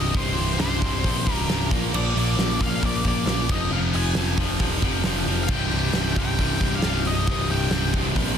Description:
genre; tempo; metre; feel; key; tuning
quiet-loud alternative rock; 135 BPM; 4/4; straight; unclear; A4 = 439 Hz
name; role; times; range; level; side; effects
octave-fuzz lead guitar; melody; 0.0-7.9 s; C5 to Ab5; -30 LUFS; left 4 dB; distortion
crunchy overdriven guitar; riff; 0.0-8.4 s; C2 to Bb3; -28 LUFS; left 12 dB; none
high-gain distorted guitar; riff; 0.0-8.4 s; C2 to Bb3; -29 LUFS; right 11 dB; distortion
overdriven picked electric bass; bass; 0.0-8.4 s; C1 to Bb1; -26 LUFS; equal; none
big rock drum kit; drums; 0.1-8.3 s; crash cymbal, hi-hat, kick drum, snare drum; -25 LUFS; right 1 dB; soft clipping on kick
overdriven electric guitar; riff; 5.5-8.4 s; C2 to C3; -31 LUFS; left 1 dB; none
room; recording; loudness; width
studio reverb; dense, heavily limited modern master; -20 LUFS; side -8 dB against mid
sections
0.0-8.4 A section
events
none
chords
0.0 C5; 1.7 Bb; 3.5 Fm; 5.5 C5

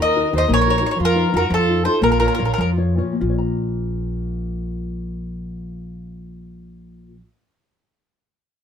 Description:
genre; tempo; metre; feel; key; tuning
italian folk, Italian serenade; 93-120 BPM (dotted quarters); 6/8; rubato; Bb minor; A4 = 440 Hz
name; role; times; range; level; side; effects
mandolin; melody; 0.0-2.7 s; A4 to Eb5; -19 LUFS; equal; none
dark violin; second line; 0.0-2.8 s; F4 to C5; -23 LUFS; right 4 dB; slapback echo
nylon-string guitar; accompaniment; 0.0-7.3 s; Bb2 to Bb5; -24 LUFS; left 4 dB; none
upright bass; bass; 0.0-7.2 s; Bb1 to F2; -24 LUFS; right 1 dB; none
room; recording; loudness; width
moderate studio reverb, RT60 0.5 s; none; -17 LUFS; side -8 dB against mid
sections
0.0-3.2 A section; 3.2-5.7 B section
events
slowing down 1.0-3.2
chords
0.0 Ebm; 1.0 F7sus4; 1.5 F7; 2.0 Bbm; 3.2 Bb5

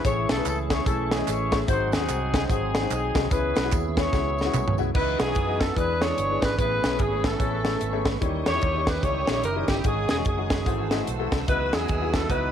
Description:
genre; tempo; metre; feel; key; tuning
uptempo gospel; 147 BPM; 4/4; swing 61% on 8ths; C# minor; A4 = 441 Hz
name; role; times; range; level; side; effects
clear horn section; melody; 0.0-12.5 s; B3 to C#5; -29 LUFS; left 3 dB; none
clear upright piano; accompaniment; 0.0-12.4 s; G#2 to E5; -31 LUFS; left 13 dB; none
tonewheel organ; sustained chords; 0.0-12.5 s; D#3 to D#5; -33 LUFS; right 13 dB; fast rotary speaker, chorus vibrato
fingered electric bass; bass; 0.0-12.5 s; E1 to F#2; -30 LUFS; right 1 dB; none
crisp fusion drum kit; drums; 0.0-12.4 s; crash cymbal, hi-hat, kick drum, snare drum, toms; -26 LUFS; equal; none
tambourine and handclaps; percussion; 0.1-4.9 s; none; -39 LUFS; right 16 dB; none
clear alto saxophone; melody; 4.9-12.5 s; G4 to C#5; -30 LUFS; right 3 dB; none
warm studio string section; sustained chords; 4.9-12.5 s; D#5 to E6; -40 LUFS; right 3 dB; none
room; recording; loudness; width
light reverb, small room ambience; 1960s-style stereo with parts hard left and right; -22 LUFS; side -9 dB against mid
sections
0.0-5.0 A section; 5.0-12.5 B section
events
drum fill 4.1-5.0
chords
0.0 Amaj7; 1.7 G#7; 3.3 C#m7; 5.0 C#m11; 5.8 E7; 6.6 Amaj9; 8.2 D#7b9; 9.8 G#7sus4; 10.7 G#7b9b13; 11.5 C#m11

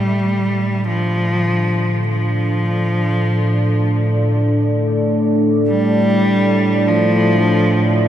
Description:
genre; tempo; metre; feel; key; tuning
dark ambient drone; 50 BPM; 4/4; straight; D minor; A4 = 440 Hz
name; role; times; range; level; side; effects
warm cello; melody; 0.0-8.1 s; F3 to G3; -19 LUFS; equal; diffuse ambient delay
dark analog pad; sustained chords; 0.0-8.1 s; D4 to D5; -20 LUFS; right 2 dB; chorus, phaser
analog drone; drone; 0.0-8.1 s; A2; -17 LUFS; equal; chorus
room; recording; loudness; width
moderate huge ambient reverb, RT60 8.4 s; none; -14 LUFS; side -10 dB against mid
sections
0.0-8.1 A section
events
none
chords
0.0 D5

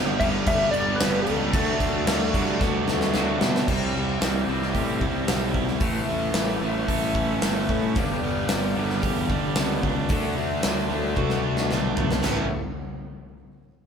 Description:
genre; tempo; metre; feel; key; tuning
classic rock; 112 BPM; 4/4; straight; unclear; A4 = 442 Hz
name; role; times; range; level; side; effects
bright tonewheel organ; sustained chords; 0.0-12.6 s; A3 to E5; -39 LUFS; right 1 dB; none
crunchy overdriven guitar; riff; 0.0-12.5 s; G2 to A4; -29 LUFS; right 7 dB; none
raw garage guitar; riff; 0.0-12.5 s; G2 to D4; -28 LUFS; left 4 dB; overdrive
fuzz fingered electric bass; bass; 0.0-12.5 s; G1 to B2; -29 LUFS; right 1 dB; overdrive
lightly driven lead guitar; melody; 0.2-3.1 s; A4 to E5; -27 LUFS; left 2 dB; wah
huge arena drum kit; drums; 0.2-12.4 s; crash cymbal, hi-hat, kick drum, snare drum, toms; -26 LUFS; equal; none
room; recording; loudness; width
light reverb; band playing live in one room; -21 LUFS; side -7 dB against mid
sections
0.0-3.7 A section; 3.7-12.2 B section; 12.2-13.9 C section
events
drum fill 2.6-3.7, 11.2-12.2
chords
0.0 G; 1.5 D; 3.7 C; 5.8 A; 8.0 G; 10.1 D; 12.2 A

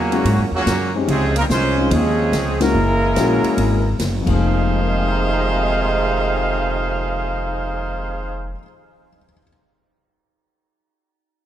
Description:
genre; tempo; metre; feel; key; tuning
jazz, big band swing; 144 BPM; 4/4; swing 67% on 8ths; F minor; A4 = 440 Hz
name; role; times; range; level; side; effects
clear trumpet section; melody; 0.0-8.5 s; G3 to F5; -22 LUFS; right 1 dB; none
bright trombone section; second line; 0.0-8.5 s; F2 to Db4; -24 LUFS; right 3 dB; none
upright bass; bass; 0.0-8.5 s; F1 to Ab2; -21 LUFS; equal; none
warm grand piano; accompaniment; 0.1-9.5 s; F2 to Bb6; -24 LUFS; left 4 dB; none
swinging big-band drum kit; drums; 0.1-4.3 s; crash cymbal, hi-hat, kick drum, ride cymbal, snare drum; -27 LUFS; left 1 dB; none
room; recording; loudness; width
light reverb; none; -16 LUFS; side -11 dB against mid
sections
0.0-4.4 A section; 4.4-7.7 B section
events
band accent 2.5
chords
0.0 Gb9; 1.1 Dbmaj7; 2.7 Gb9; 4.2 Fm11

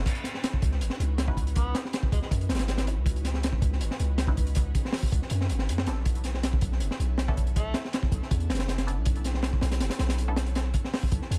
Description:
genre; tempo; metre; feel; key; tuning
drum and bass, jungle; 160 BPM; 4/4; straight; C# phrygian; A4 = 437 Hz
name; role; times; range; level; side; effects
ethereal airy pad; sustained chords; 0.1-11.4 s; D3 to D#5; -45 LUFS; equal; none
filtered dub chord stab; stabs; 0.0-10.4 s; B3 to B4; -44 LUFS; equal; phaser, dub echo
long sustained 808-style bass; bass; 0.0-11.4 s; F#1 to F#2; -30 LUFS; equal; none
crunchy breakbeat drum kit; drums; 0.1-11.4 s; crash cymbal, hi-hat, kick drum, snare drum; -30 LUFS; equal; none
clear tenor saxophone; melody; 1.6-2.3, 7.6-7.8 s; G#3 to B3; -42 LUFS; equal; dub echo
room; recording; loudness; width
studio reverb; none; -28 LUFS; mono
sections
0.1-11.4 A section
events
drop 0.1-11.4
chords
0.1 C#m11; 6.1 Bm11

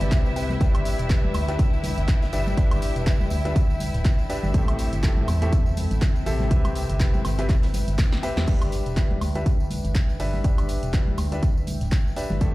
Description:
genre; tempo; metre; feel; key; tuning
piano house; 122 BPM; 4/4; swing 57% on 16ths; G major; A4 = 439 Hz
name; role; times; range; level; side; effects
rich studio violin section; sustained chords; 0.0-8.5 s; E4 to E5; -36 LUFS; left 1 dB; vintage 12-bit sampler grit, sidechain pumping
clear concert grand piano; riff; 0.0-12.5 s; A2 to E5; -30 LUFS; equal; sidechain pumping, low-pass filter, dub echo
organ-like FM bass; bass; 0.0-12.5 s; D1 to E2; -25 LUFS; equal; sidechain pumping
open jazz drum kit; drums; 0.0-12.5 s; hi-hat, snare drum; -44 LUFS; equal; none
punchy analog drum machine; drums; 0.0-12.5 s; crash cymbal, handclaps, hi-hat, snare drum, woodblock; -35 LUFS; right 1 dB; none
tambourine and congas; percussion; 0.0-12.5 s; none; -35 LUFS; left 1 dB; none
warbly tape-like pad; texture; 0.0-12.5 s; C4 to G5; -36 LUFS; left 2 dB; chorus, built-in reverb, sidechain pumping
electronic kick drum; drums; 0.1-12.5 s; none; -21 LUFS; equal; none
room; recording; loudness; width
small room ambience; played on a big sound system in a bare room, large studio reverb; -20 LUFS; side -18 dB against mid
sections
0.0-8.5 A section; 8.5-12.5 B section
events
drop 0.0-8.5; drum fill 8.0-8.5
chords
0.0 Am7 (rootless); 0.6 G6; 4.5 Am7; 6.5 Cmaj7; 8.5 G6

